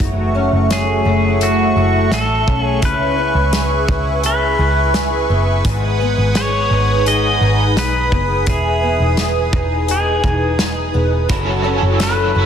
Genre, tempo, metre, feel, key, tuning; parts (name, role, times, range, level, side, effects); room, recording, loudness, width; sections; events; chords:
dream pop; 85 BPM; 4/4; straight; F# dorian; A4 = 440 Hz
phased analog pad; sustained chords; 0.0-12.5 s; A3 to D#6; -21 LUFS; right 1 dB; phaser, chorus
fingerpicked twelve-string acoustic guitar; arpeggios; 0.0-12.5 s; G#2 to A4; -22 LUFS; left 4 dB; ensemble chorus, tape echo
vintage muted picked electric bass; bass; 0.0-12.5 s; E1 to C#2; -18 LUFS; right 1 dB
loose indie drum kit; drums; 0.0-12.2 s; hi-hat, kick drum, snare drum; -20 LUFS; equal
pedal steel guitar; melody; 0.7-12.5 s; F#4 to D#5; -19 LUFS; equal; tape echo
overdriven semi-hollow guitar; accompaniment; 11.3-12.5 s; F#3 to A4; -21 LUFS; right 5 dB; tremolo, ensemble chorus
synth chime; texture; 11.3-12.5 s; B5; -31 LUFS; left 4 dB; ensemble chorus, tremolo, tape echo
moderate lush hall reverb, RT60 2.7 s; dense, heavily limited modern master; -13 LUFS; side -8 dB against mid
0.0-12.5 A section
0.0 F#m7; 2.8 C#m7; 5.6 G#m7; 8.5 Emaj7; 11.3 F#m7